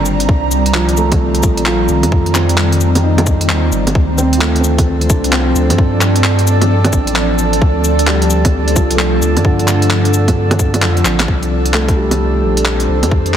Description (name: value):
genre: future garage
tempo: 131 BPM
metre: 4/4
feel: swing 63% on 16ths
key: C dorian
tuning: A4 = 440 Hz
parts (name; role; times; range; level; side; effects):
- dark upright piano; accompaniment; 0.0-13.4 s; D3 to F4; -19 LUFS; right 2 dB; sidechain pumping, low-pass filter, digital delay
- ethereal airy pad; sustained chords; 0.0-13.4 s; Eb3 to Bb5; -18 LUFS; equal; ensemble chorus, built-in reverb, sidechain pumping
- warm sub bass; bass; 0.0-13.4 s; G1 to G2; -15 LUFS; equal; sidechain pumping
- garage drum kit; drums; 0.1-13.4 s; bongos, cabasa, handclaps, hi-hat; -18 LUFS; equal; none
- electronic kick drum; drums; 0.3-13.2 s; none; -15 LUFS; equal; none
- drifting glass-harmonics texture; texture; 5.0-13.4 s; A4; -24 LUFS; right 5 dB; chorus, built-in reverb
room: light reverb, digital ambience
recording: heavily compressed radio sound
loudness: -11 LUFS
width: side -9 dB against mid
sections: 0.0-11.3 A section; 11.3-13.4 B section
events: drum fill 11.1; filter sweep on upright piano 11.3-13.4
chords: 0.0 Cm9; 4.0 Dm7; 11.3 Cm9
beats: | 0.29 0.75 1.20 1.66 | 2.12 2.58 3.04 3.49 | 3.95 4.41 4.87 5.33 | 5.78 6.24 6.70 7.16 | 7.62 8.07 8.53 8.99 | 9.45 9.91 10.36 10.82 | 11.28 11.74 12.20 12.65 | 13.11